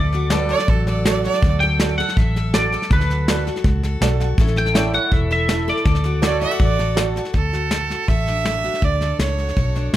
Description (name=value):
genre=honky-tonk and classic country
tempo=162 BPM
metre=4/4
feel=straight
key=D major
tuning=A4 = 442 Hz
part: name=twangy electric guitar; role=melody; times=0.0-6.9 s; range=B4 to G5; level=-23 LUFS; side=left 1 dB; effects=analog chorus, tape echo
part: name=picked steel-string acoustic guitar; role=accompaniment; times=0.0-10.0 s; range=A2 to A4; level=-28 LUFS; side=left 5 dB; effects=none
part: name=vintage muted fingered electric bass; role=bass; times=0.0-10.0 s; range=E1 to D2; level=-21 LUFS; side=equal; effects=none
part: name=soft brush drum kit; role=drums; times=0.1-10.0 s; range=hi-hat, kick drum, snare drum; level=-21 LUFS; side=equal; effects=none
part: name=tack piano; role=accompaniment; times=0.3-7.2 s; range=E4 to F#5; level=-27 LUFS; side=right 9 dB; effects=none
part: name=pedal steel guitar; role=sustained chords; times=0.3-7.3 s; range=F#3 to D5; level=-28 LUFS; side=right 1 dB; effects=none
part: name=rich fiddle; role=second line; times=0.5-1.5, 6.2-10.0 s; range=A4 to E5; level=-23 LUFS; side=right 5 dB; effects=none
room=little or no reverb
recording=close, detailed microphones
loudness=-16 LUFS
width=side -13 dB against mid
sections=0.0-7.3 A section; 7.3-10.0 B section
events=honky-tonk piano fill 3.8-4.4; fiddle solo 7.3-10.0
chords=0.0 D; 4.4 A; 5.9 D